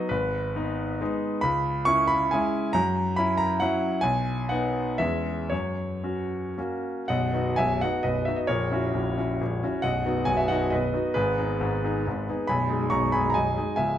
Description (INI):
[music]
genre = classical, romantic triple-time dance for piano with dotted rhythms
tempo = 111-147 BPM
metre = 3/4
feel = rubato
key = B major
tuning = A4 = 440 Hz
[part]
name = clear concert grand piano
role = solo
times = 0.0-14.0 s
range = A#0 to C#6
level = -23 LUFS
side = equal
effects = none
[sound]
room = moderate recital hall reverb, RT60 1.4 s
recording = close, detailed microphones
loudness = -23 LUFS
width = side -10 dB against mid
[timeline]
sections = 0.0-7.1 A section; 7.1-14.0 A section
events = none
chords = 0.1 G#m; 1.4 C#m7; 2.8 F#7; 4.0 B; 5.0 C#m/E; 5.5 F#; 7.1 B; 8.5 F#7/A#; 9.8 B; 11.2 G#m; 12.5 G#m/B